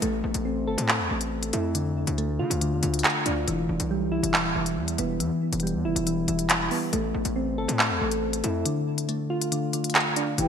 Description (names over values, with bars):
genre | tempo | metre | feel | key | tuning
hip hop, drill | 139 BPM | 4/4 | half-time | unclear | A4 = 440 Hz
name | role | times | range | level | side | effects
soft electric-piano-like synth keys | arpeggios | 0.0-10.5 s | D3 to A4 | -26 LUFS | left 1 dB | chorus, digital delay
distorted 808-style bass | bass | 0.0-10.5 s | D1 to D3 | -30 LUFS | equal | distortion
drill drum kit | drums | 0.0-10.5 s | handclaps, hi-hat | -25 LUFS | equal | gated reverb
hollow soft pad | sustained chords | 10.4-10.5 s | E4 to G5 | -24 LUFS | left 1 dB | chorus
room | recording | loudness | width
wet lush hall reverb, RT60 1.9 s | bright 1980s-style digital production | -23 LUFS | side -7 dB against mid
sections
0.0-10.5 A section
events
kick muted 8.7-10.4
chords
0.0 Am; 1.7 Dm; 3.5 Em; 6.9 Am; 8.7 Dm